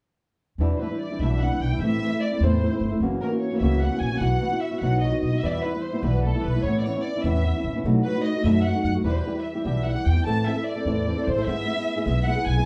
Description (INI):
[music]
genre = mexican folk, mariachi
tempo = 100 BPM (dotted quarters)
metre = 6/8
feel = straight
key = E minor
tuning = A4 = 440 Hz
[part]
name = flamenco guitar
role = accompaniment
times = 0.6-12.7 s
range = E2 to A4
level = -27 LUFS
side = equal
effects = none
[part]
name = upright bass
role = bass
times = 0.6-12.6 s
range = F#1 to F#2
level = -26 LUFS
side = equal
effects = none
[part]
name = warm studio violin section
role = melody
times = 0.8-12.7 s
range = A4 to A5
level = -32 LUFS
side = equal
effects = none
[sound]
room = wet studio reverb, RT60 0.6 s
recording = heard from further back in the room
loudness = -24 LUFS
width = mono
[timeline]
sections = 0.6-12.7 A section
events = none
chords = 0.6 Em7; 1.8 Am; 3.0 F#7; 4.2 Bsus4; 4.8 B; 5.4 Em; 6.6 Aadd9; 7.8 B7; 9.0 Em; 10.3 Am; 11.5 E/G#